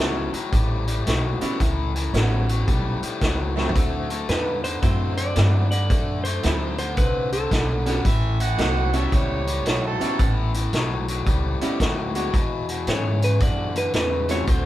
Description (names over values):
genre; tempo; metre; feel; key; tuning
electric blues shuffle; 112 BPM; 4/4; swing 65% on 8ths; A mixolydian; A4 = 440 Hz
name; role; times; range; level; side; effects
tack piano; accompaniment; 0.0-14.7 s; F#3 to F#4; -29 LUFS; right 2 dB; none
overdriven semi-hollow guitar; riff; 0.0-14.7 s; E2 to C4; -28 LUFS; left 4 dB; none
upright bass; bass; 0.0-14.7 s; A1 to G#2; -24 LUFS; equal; none
vintage drum kit; drums; 0.0-14.6 s; hi-hat, kick drum, snare drum, toms; -24 LUFS; equal; none
clean lap steel guitar; melody; 4.3-8.0, 12.9-14.7 s; A4 to D5; -27 LUFS; right 1 dB; none
overdriven harmonica; second line; 8.1-10.4 s; A4 to F#5; -28 LUFS; right 7 dB; none
room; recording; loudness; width
moderate studio ambience, RT60 0.5 s; band playing live in one room; -20 LUFS; side -14 dB against mid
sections
0.0-14.7 A section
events
drum fill 3.5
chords
0.0 A7; 3.8 D7; 8.1 A7; 12.3 E7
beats
0.53 1.06 | 1.60 2.14 2.68 3.22 | 3.75 4.29 4.83 5.37 | 5.90 6.44 6.98 7.51 | 8.05 8.59 9.12 9.66 | 10.20 10.73 11.27 11.80 | 12.34 12.88 13.41 13.95 | 14.48